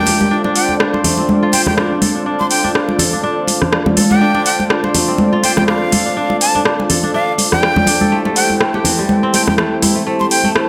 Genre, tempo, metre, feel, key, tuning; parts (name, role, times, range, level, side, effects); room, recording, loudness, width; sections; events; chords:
afro house; 123 BPM; 4/4; swing 56% on 16ths; D minor; A4 = 440 Hz
breathy bright jazz flute; melody; 0.0-10.5 s; F5 to C6; -21 LUFS; equal; digital delay
dark analog pad; sustained chords; 0.0-10.7 s; D4 to A5; -25 LUFS; equal; chorus
kora; arpeggios; 0.0-10.7 s; E3 to D5; -23 LUFS; equal; digital delay
mellow synth brass; stabs; 0.0-10.7 s; D4 to D5; -25 LUFS; equal; chorus, digital delay
afro-pop drum kit; drums; 0.1-10.7 s; hi-hat, rim click; -19 LUFS; equal; overdrive
congas; percussion; 0.1-10.5 s; -20 LUFS; equal
moderate digital room reverb, RT60 1.0 s, small room ambience; -14 LUFS; mono
0.0-10.7 A section
0.3 Dm7; 8.1 Am7